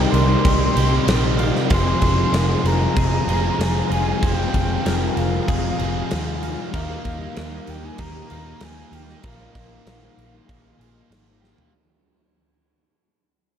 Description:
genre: rock, shoegaze and dream pop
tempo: 96 BPM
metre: 4/4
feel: straight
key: unclear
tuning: A4 = 441 Hz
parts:
  - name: mellow silver concert flute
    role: melody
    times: 0.0-11.1 s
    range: F5 to C6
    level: -28 LUFS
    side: left 1 dB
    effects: tape echo
  - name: soft string machine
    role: sustained chords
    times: 0.0-11.7 s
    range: G3 to Eb6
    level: -32 LUFS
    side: right 1 dB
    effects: ensemble chorus
  - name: twelve-string electric guitar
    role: arpeggios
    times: 0.0-11.7 s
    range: F4 to C5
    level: -34 LUFS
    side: right 2 dB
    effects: analog chorus, tape echo
  - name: biting overdriven guitar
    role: riff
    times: 0.0-11.7 s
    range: F2 to Ab4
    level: -30 LUFS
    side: right 11 dB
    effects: reverse reverb
  - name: overdriven electric guitar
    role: riff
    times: 0.0-11.7 s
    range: F2 to Eb4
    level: -27 LUFS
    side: equal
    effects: none
  - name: overdriven semi-hollow guitar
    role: riff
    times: 0.0-11.7 s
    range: F2 to Ab4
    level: -28 LUFS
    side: left 11 dB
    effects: wide subtle chorus
  - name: vintage muted fingered electric bass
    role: bass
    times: 0.0-11.5 s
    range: F1 to Eb2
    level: -23 LUFS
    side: equal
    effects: none
  - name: huge arena drum kit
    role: drums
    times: 0.1-11.7 s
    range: crash cymbal, kick drum, snare drum, toms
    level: -24 LUFS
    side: equal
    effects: none
room: light reverb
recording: dark, warm production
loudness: -17 LUFS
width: side -8 dB against mid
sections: 0.0-11.7 A section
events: fade-out 0.0-11.7; drum fill 11.4-11.7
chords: 0.0 Cm7; 1.7 Fm; 6.7 Ebadd9; 9.2 Bbsus4

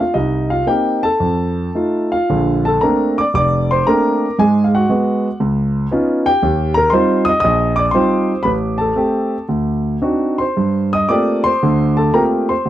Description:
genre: solo jazz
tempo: 116 BPM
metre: 4/4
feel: swing 69% on 8ths, rubato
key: Bb major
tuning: A4 = 441 Hz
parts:
  - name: warm concert grand piano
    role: solo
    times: 0.0-12.7 s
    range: F1 to Eb6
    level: -14 LUFS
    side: equal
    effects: none
room: light reverb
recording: dry, close 1970s-style studio recording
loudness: -14 LUFS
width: side -12 dB against mid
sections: 0.0-2.3 A section; 2.3-12.7 B section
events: none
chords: 0.2 Cm7; 1.2 F7; 2.3 Bbmaj9; 4.4 Abm7; 5.4 Db9; 6.4 Eb69; 8.5 Am7; 9.5 D7b9; 10.6 Gm11

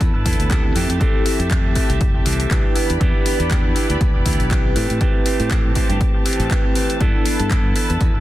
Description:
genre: filtered disco house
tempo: 120 BPM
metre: 4/4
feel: swing 56% on 16ths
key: G major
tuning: A4 = 439 Hz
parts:
  - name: mellow tine electric piano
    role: accompaniment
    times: 0.0-8.2 s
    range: B3 to B4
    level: -24 LUFS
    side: equal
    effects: phaser, sidechain pumping, low-pass filter
  - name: rich studio string section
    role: sustained chords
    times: 0.0-8.2 s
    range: C4 to B5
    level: -29 LUFS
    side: left 1 dB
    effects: sidechain pumping, low-pass filter
  - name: electric guitar with an envelope filter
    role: riff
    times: 0.0-8.2 s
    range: E3 to A4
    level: -26 LUFS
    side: right 4 dB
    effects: sidechain pumping, low-pass filter
  - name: modern bright fingered electric bass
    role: bass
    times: 0.0-8.2 s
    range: E1 to A2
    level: -22 LUFS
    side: equal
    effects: sidechain pumping, low-pass filter
  - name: electronic kick drum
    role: drums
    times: 0.0-8.1 s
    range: none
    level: -18 LUFS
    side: equal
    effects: none
  - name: house drum kit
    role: drums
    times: 0.0-8.1 s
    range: handclaps, hi-hat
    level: -28 LUFS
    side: left 2 dB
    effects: sidechain pumping on hats, sidechain pumping on cymbals
room: little or no reverb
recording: dense, heavily limited modern master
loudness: -15 LUFS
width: side -15 dB against mid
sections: 0.0-8.2 A section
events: none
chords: 0.0 G69; 0.8 Fmaj9; 2.8 Cmaj9/E; 4.8 Am7; 7.0 G69

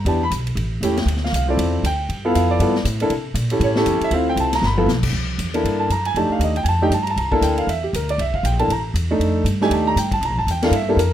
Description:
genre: jazz, small-group swing and bop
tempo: 236 BPM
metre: 4/4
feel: swing 59% on 8ths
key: C mixolydian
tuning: A4 = 440 Hz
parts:
  - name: warm upright piano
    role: accompaniment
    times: 0.0-11.1 s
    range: A3 to B5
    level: -19 LUFS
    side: equal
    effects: none
  - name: upright bass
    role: bass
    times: 0.0-11.1 s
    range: G1 to C3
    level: -21 LUFS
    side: equal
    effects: none
  - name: swinging big-band drum kit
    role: drums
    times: 0.1-11.1 s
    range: crash cymbal, hi-hat, kick drum, ride cymbal, snare drum, toms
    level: -28 LUFS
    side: left 1 dB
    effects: none
room: light reverb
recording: none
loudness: -17 LUFS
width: side -11 dB against mid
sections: 0.0-5.1 A section; 5.1-11.1 A section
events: drum fill 4.6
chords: 0.1 Em7; 0.6 A7; 1.1 Dm7; 2.1 G13; 3.1 C6; 3.6 A7; 4.1 Dm7; 4.6 G13; 5.1 C13; 6.2 F13; 7.2 C13; 9.2 F13; 10.2 C13 (rootless)

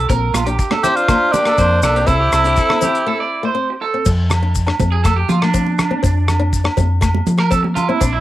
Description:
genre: highlife guitar band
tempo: 121 BPM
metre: 4/4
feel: straight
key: F major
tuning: A4 = 440 Hz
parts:
  - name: electric guitar through a small old amp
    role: arpeggios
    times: 0.0-8.2 s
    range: D4 to D5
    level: -20 LUFS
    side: right 6 dB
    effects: vibrato effect, cassette tape, plate reverb, analog delay
  - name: hollow-body short-scale fingered electric bass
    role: bass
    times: 0.0-8.2 s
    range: Bb1 to F3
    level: -17 LUFS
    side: equal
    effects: none
  - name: nylon-string guitar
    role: accompaniment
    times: 0.1-8.2 s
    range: A3 to D4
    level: -24 LUFS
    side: left 6 dB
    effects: cassette tape
  - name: damped 70s drum kit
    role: drums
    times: 0.1-8.1 s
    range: crash cymbal, hi-hat, kick drum, rim click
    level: -20 LUFS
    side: equal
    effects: cassette tape
  - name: maracas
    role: percussion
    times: 0.1-8.1 s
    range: none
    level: -31 LUFS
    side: left 8 dB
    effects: none
  - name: agogo bells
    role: percussion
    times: 0.3-7.9 s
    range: none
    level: -26 LUFS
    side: equal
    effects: none
  - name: congas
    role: percussion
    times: 0.3-8.0 s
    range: none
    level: -24 LUFS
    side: right 6 dB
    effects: none
  - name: raspy tenor saxophone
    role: melody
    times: 0.8-3.6 s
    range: D4 to G4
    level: -16 LUFS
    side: equal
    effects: cassette tape
  - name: breathy alto saxophone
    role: second line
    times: 0.8-3.6 s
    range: Bb3 to E4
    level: -26 LUFS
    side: left 6 dB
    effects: cassette tape
room: light reverb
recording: home recording on cassette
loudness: -13 LUFS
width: side -14 dB against mid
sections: 0.0-4.1 A section; 4.1-8.2 B section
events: break 3.1-4.1; clean electric guitar solo 4.1-8.2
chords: 0.1 Bbadd9; 2.1 Cadd9; 4.1 F6

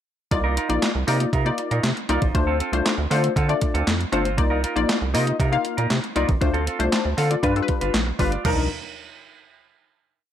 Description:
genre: early-eighties boogie funk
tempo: 118 BPM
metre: 4/4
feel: straight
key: C dorian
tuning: A4 = 444 Hz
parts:
  - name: funky polysynth comp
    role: accompaniment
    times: 0.3-8.7 s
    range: F3 to A5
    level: -24 LUFS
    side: left 4 dB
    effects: chorus
  - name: clean electric guitar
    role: riff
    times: 0.3-8.6 s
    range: C4 to D5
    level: -28 LUFS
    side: right 4 dB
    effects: wide subtle chorus
  - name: rubbery square bass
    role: bass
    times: 0.3-8.7 s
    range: G1 to D3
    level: -24 LUFS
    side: right 1 dB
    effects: none
  - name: crisp 8-bit digital drum machine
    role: drums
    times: 0.3-8.6 s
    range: crash cymbal, handclaps, hi-hat, kick drum, snare drum, toms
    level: -24 LUFS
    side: right 1 dB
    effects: overdrive, gated reverb
room: light reverb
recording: none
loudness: -19 LUFS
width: side -10 dB against mid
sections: 0.3-8.4 verse; 8.4-10.3 final chord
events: none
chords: 0.3 Cm11; 2.3 Dm7; 4.4 Cm11; 6.4 Dm7; 7.4 G7; 8.4 Cm11

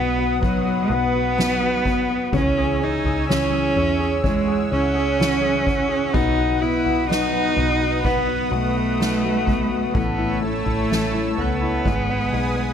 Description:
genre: pop ballad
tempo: 63 BPM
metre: 4/4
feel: straight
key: unclear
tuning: A4 = 440 Hz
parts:
  - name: rich cello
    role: melody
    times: 0.0-12.7 s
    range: F#3 to E4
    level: -22 LUFS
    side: right 3 dB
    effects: none
  - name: clear grand piano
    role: accompaniment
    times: 0.0-12.7 s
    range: G#3 to G#4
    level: -26 LUFS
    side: left 6 dB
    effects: none
  - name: warm analog pad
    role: sustained chords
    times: 0.0-12.7 s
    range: B4 to E6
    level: -29 LUFS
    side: right 1 dB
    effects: chorus
  - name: fingerpicked steel-string acoustic guitar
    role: arpeggios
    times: 0.0-12.7 s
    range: A2 to A4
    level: -29 LUFS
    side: left 8 dB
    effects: ping-pong delay
  - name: vintage muted fingered electric bass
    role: bass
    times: 0.0-12.7 s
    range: G#1 to E2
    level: -27 LUFS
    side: right 1 dB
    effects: none
  - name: soft-mallet drum kit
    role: drums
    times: 0.4-12.1 s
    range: kick drum, snare drum, toms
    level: -27 LUFS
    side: equal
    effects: none
room: light reverb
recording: none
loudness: -18 LUFS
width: side -8 dB against mid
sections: 0.0-12.7 A section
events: none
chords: 0.0 B; 2.3 C#m; 6.1 B; 9.9 A; 11.9 G#m

